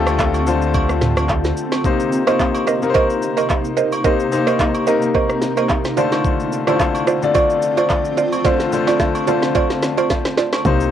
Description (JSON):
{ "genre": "amapiano", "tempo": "109 BPM", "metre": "4/4", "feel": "swing 55% on 16ths", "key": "unclear", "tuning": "A4 = 440 Hz", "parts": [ { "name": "clear grand piano", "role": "accompaniment", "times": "0.0-10.9 s", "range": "C3 to D5", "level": "-19 LUFS", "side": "left 6 dB", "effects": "cassette tape" }, { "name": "granular cloud pad", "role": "sustained chords", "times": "0.0-10.6 s", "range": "C3 to F4", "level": "-24 LUFS", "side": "right 2 dB", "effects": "built-in reverb, cassette tape" }, { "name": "sub bass with octave", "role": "bass", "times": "0.0-1.5 s", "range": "D2", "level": "-21 LUFS", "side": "right 1 dB", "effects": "none" }, { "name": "smooth R&B drum kit", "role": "drums", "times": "0.1-10.9 s", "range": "handclaps, kick drum, rim click, shaker, snare drum, toms", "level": "-21 LUFS", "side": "right 1 dB", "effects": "overdrive, cassette tape" }, { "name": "agogo bells and woodblock", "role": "percussion", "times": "0.1-10.6 s", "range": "none", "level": "-25 LUFS", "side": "right 2 dB", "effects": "none" }, { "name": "mallet-like synth pluck", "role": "stabs", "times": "2.3-10.5 s", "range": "F4 to Eb5", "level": "-20 LUFS", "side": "right 7 dB", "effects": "chorus, cassette tape, analog delay" }, { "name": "woody log drum bass", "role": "bass", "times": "10.7-10.9 s", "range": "C2", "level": "-18 LUFS", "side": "right 1 dB", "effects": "none" } ], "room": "light reverb", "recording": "home recording on cassette", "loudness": "-15 LUFS", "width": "side -10 dB against mid", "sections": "0.0-10.7 A section", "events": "drum fill 8.4-10.7", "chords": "0.0 Dm7; 1.8 Cm7; 6.0 Dm7", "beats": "0.19 0.74 1.29 | 1.84 2.39 2.94 3.49 | 4.04 4.59 5.15 5.70 | 6.25 6.80 7.35 7.90 | 8.45 9.00 9.55 10.10 | 10.65" }